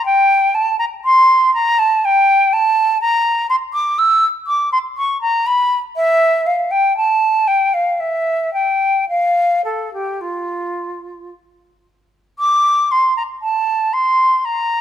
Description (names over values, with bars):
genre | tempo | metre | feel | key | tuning
classical, baroque-style fantasia for unaccompanied flute | 53-62 BPM | 3/4 | rubato | F major | A4 = 440 Hz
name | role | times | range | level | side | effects
concert flute | solo | 0.0-14.8 s | F4 to E6 | -13 LUFS | equal | none
room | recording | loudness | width
light reverb | close, detailed microphones | -13 LUFS | side -10 dB against mid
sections
0.0-12.4 A section; 12.4-14.8 B section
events
none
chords
none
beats
| 0.07 1.06 2.04 | 3.02 4.00 4.98 | 5.97 6.97 8.00 | 9.09 10.21 11.31 | 12.40 13.44 14.47